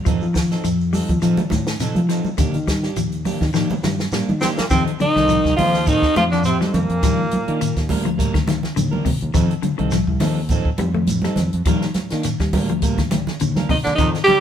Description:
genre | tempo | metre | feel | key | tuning
afrobeat | 104 BPM | 4/4 | swing 54% on 16ths | F mixolydian | A4 = 436 Hz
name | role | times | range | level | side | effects
clean electric guitar | arpeggios | 0.1-14.4 s | C3 to A3 | -24 LUFS | left 8 dB | none
electric guitar at the edge of break-up | stabs | 0.1-14.2 s | F3 to Bb4 | -28 LUFS | right 5 dB | none
fingered electric bass | bass | 0.1-14.3 s | C2 to F3 | -23 LUFS | equal | none
compact cocktail drum kit | drums | 0.1-14.4 s | hi-hat, kick drum, snare drum | -23 LUFS | equal | none
congas | percussion | 0.1-14.4 s | none | -25 LUFS | right 2 dB | none
shekere | percussion | 0.1-14.4 s | none | -30 LUFS | right 5 dB | none
raspy tenor saxophone | melody | 4.4-7.9, 13.7-14.4 s | Bb3 to G4 | -19 LUFS | right 1 dB | none
brilliant trombone section | second line | 4.4-7.9, 13.7-14.4 s | Bb2 to G3 | -26 LUFS | left 1 dB | none
trombone with metal mute | second line | 4.4-7.9, 13.7-14.4 s | Bb3 to G4 | -27 LUFS | right 3 dB | none
room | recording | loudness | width
moderate stone room reverb, RT60 1.6 s | band playing live in one room | -17 LUFS | side -9 dB against mid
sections
0.0-4.7 A section; 4.7-14.4 B section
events
drum fill 3.5-4.7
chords
0.1 F7; 2.4 Ebmaj7; 4.7 F7; 7.0 Ebmaj7; 9.3 F7; 11.7 Ebmaj7

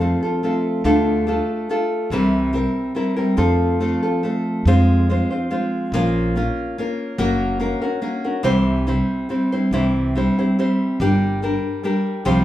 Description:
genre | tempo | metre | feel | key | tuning
mexican folk, mariachi | 142 BPM | 3/4 | straight | F major, F minor from 4.7 s | A4 = 439 Hz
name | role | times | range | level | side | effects
nylon-string guitar | accompaniment | 0.0-12.4 s | Bb2 to C5 | -18 LUFS | equal | none
upright bass | bass | 0.0-12.4 s | Gb1 to F2 | -22 LUFS | equal | none
room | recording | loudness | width
wet large studio reverb, RT60 0.9 s | band playing live in one room | -17 LUFS | side -13 dB against mid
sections
0.0-4.7 A section; 4.7-12.4 B section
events
none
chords
0.0 F; 0.8 Dm; 2.1 C7; 3.4 F; 4.7 Fm; 5.9 Bbm; 7.2 Gb; 8.5 C; 11.0 Gm

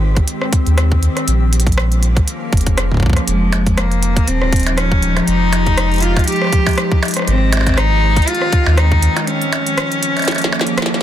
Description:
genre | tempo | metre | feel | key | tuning
IDM | 120 BPM | 4/4 | swing 56% on 16ths | F minor | A4 = 440 Hz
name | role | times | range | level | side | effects
glassy FM pad | sustained chords | 0.0-11.0 s | Eb3 to Ab4 | -21 LUFS | left 1 dB | ensemble chorus, built-in reverb, sidechain pumping
warm sub bass | bass | 0.0-9.1 s | Eb1 to Eb2 | -15 LUFS | equal | none
electronic kick drum | drums | 0.2-9.0 s | none | -15 LUFS | equal | overdrive
glitchy drum kit | drums | 0.2-11.0 s | hi-hat, percussion blips, rim click, snare drum | -21 LUFS | right 1 dB | overdrive, soft clipping on snare
clear cello | melody | 3.3-11.0 s | Ab3 to G4 | -19 LUFS | equal | tape echo
room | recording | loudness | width
digital ambience | dense, heavily limited modern master | -12 LUFS | side -11 dB against mid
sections
0.0-11.0 A section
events
break 9.3-11.0; drum fill 10.3-11.0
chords
0.0 Abmaj7; 1.3 Bbm7; 3.3 Fm9; 7.3 Abmaj7; 9.3 Bbm7

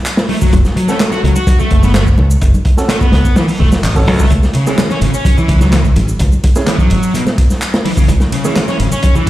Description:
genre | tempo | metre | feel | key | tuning
breakbeat, breaks | 127 BPM | 4/4 | straight | F# minor | A4 = 439 Hz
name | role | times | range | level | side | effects
crunchy breakbeat drum kit | drums | 0.1-9.3 s | hi-hat, kick drum, snare drum | -13 LUFS | equal | none
house drum kit | drums | 0.1-9.3 s | handclaps, ride cymbal, shaker | -25 LUFS | equal | none
congas | percussion | 0.2-9.2 s | none | -22 LUFS | equal | none
fuzz guitar | riff | 0.3-9.3 s | B2 to F#4 | -17 LUFS | equal | distortion, vintage 12-bit sampler grit, tape echo
modern bright fingered electric bass | bass | 0.5-9.3 s | E1 to C#2 | -13 LUFS | equal | none
dark grand piano | stabs | 0.9-8.6 s | C#4 to A4 | -22 LUFS | right 3 dB | tape echo
room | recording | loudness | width
light reverb, studio ambience | played on a big sound system in a bare room, stone room reverb | -10 LUFS | side -15 dB against mid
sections
0.0-9.3 A section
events
none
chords
0.0 F#m; 4.3 C#m

